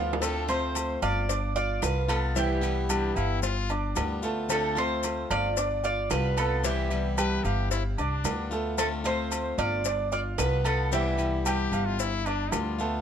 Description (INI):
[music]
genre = latin, Cuban son and guajira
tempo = 112 BPM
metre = 4/4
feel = straight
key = unclear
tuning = A4 = 442 Hz
[part]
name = picked plugged-in swing-style acoustic guitar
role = accompaniment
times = 0.0-13.0 s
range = C3 to F4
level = -34 LUFS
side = left 4 dB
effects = none
[part]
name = bright baby grand piano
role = arpeggios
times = 0.0-13.0 s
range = E3 to F6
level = -33 LUFS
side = right 4 dB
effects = none
[part]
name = upright bass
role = bass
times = 0.0-13.0 s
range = G1 to D2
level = -30 LUFS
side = equal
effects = none
[part]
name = timbales and agogo bells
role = percussion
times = 0.1-12.8 s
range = none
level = -34 LUFS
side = equal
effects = none
[part]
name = Cuban tres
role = melody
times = 0.2-12.8 s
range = G4 to D5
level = -31 LUFS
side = right 2 dB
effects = none
[part]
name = cowbell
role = percussion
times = 0.2-12.8 s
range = none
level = -36 LUFS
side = left 10 dB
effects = none
[part]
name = maracas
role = percussion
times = 0.2-13.0 s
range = none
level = -37 LUFS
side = left 8 dB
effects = none
[part]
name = bright trumpet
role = second line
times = 2.9-3.7, 7.2-12.9 s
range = D4 to B4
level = -34 LUFS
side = left 6 dB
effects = none
[sound]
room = light reverb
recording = none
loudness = -25 LUFS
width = side -8 dB against mid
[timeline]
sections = 0.2-13.0 A section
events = drum fill 0.0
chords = 0.2 Dm7; 1.3 G7; 2.4 Cmaj7; 3.4 G7; 4.5 Dm7; 5.6 G7; 6.6 Cmaj7; 7.7 G7; 8.8 Dm7; 9.8 G7; 10.9 Cmaj7; 12.0 G7